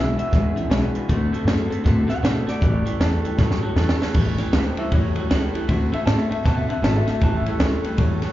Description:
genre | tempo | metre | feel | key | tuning
rockabilly | 157 BPM | 4/4 | swing 62% on 8ths | A mixolydian | A4 = 441 Hz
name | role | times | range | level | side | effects
electric guitar through a small old amp | melody | 0.0-8.2 s | G4 to A5 | -30 LUFS | left 2 dB | spring reverb, slapback echo, tape echo
picked steel-string acoustic guitar | accompaniment | 0.0-8.3 s | A2 to B4 | -26 LUFS | left 3 dB | slapback echo
electric guitar through a small old amp | riff | 0.0-8.3 s | E2 to B3 | -27 LUFS | right 1 dB | spring reverb
upright bass | bass | 0.0-8.3 s | G#1 to B2 | -23 LUFS | equal | none
compact cocktail drum kit | drums | 0.2-8.3 s | crash cymbal, hi-hat, kick drum, ride cymbal, snare drum | -23 LUFS | equal | none
room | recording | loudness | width
small room reverb | live gig heard through the venue's PA, club reverb, nothing above 7.5 kHz | -18 LUFS | side -14 dB against mid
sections
0.0-4.2 A section; 4.2-8.3 B section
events
drum fill 3.4-4.2; clean electric guitar solo 4.2-8.3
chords
0.0 E7; 1.1 D7; 2.6 A7; 5.7 D7; 7.2 A7

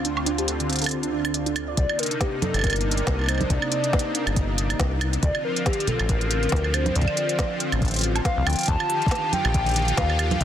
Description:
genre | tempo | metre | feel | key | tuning
IDM | 139 BPM | 4/4 | swing 56% on 16ths | unclear | A4 = 441 Hz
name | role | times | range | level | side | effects
warm analog pad | sustained chords | 0.0-10.4 s | D2 to G4 | -28 LUFS | left 1 dB | chorus
harp-like synth pluck | arpeggios | 0.0-1.7 s | D3 to D5 | -29 LUFS | right 6 dB | chorus, phaser, digital delay
organic electronic drum kit | drums | 0.0-10.4 s | congas, hi-hat, snare drum, woodblock | -27 LUFS | right 2 dB | none
warbly nostalgic lead | melody | 1.8-10.4 s | G4 to A5 | -27 LUFS | left 1 dB | chorus, tape echo
deep acid bass | bass | 1.8-10.4 s | G1 to Eb2 | -24 LUFS | equal | tube saturation
electronic kick drum | drums | 1.8-10.4 s | none | -24 LUFS | equal | none
room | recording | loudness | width
light reverb, digital ambience | dense, heavily limited modern master | -21 LUFS | side -10 dB against mid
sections
0.0-1.8 A section; 1.8-10.4 B section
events
filter sweep on synth pluck 0.0-1.8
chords
0.0 Dm7; 1.8 Cm9; 5.2 Dm7; 8.7 Ebmaj9

